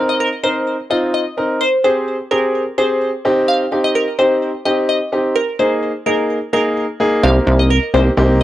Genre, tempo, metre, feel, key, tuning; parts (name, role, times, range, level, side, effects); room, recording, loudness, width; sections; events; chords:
dance-pop; 128 BPM; 4/4; straight; C minor; A4 = 440 Hz
clear baby grand piano; accompaniment; 0.0-8.4 s; Bb3 to Bb4; -16 LUFS; equal; cassette tape
glassy wavetable pluck; melody; 0.1-8.4 s; Bb4 to F5; -18 LUFS; equal; chorus, cassette tape, tape echo
plucky analog bass; bass; 7.2-8.4 s; C2; -12 LUFS; equal
moderate booth ambience, RT60 0.2 s; home recording on cassette; -14 LUFS; side -14 dB against mid
0.0-7.2 A section; 7.2-8.4 B section
build-up 0.0-7.2; drop 7.2-8.4
0.0 Cm7; 1.6 Abmaj7/C; 3.2 Eb6; 5.4 Bb7sus4; 7.2 Cm7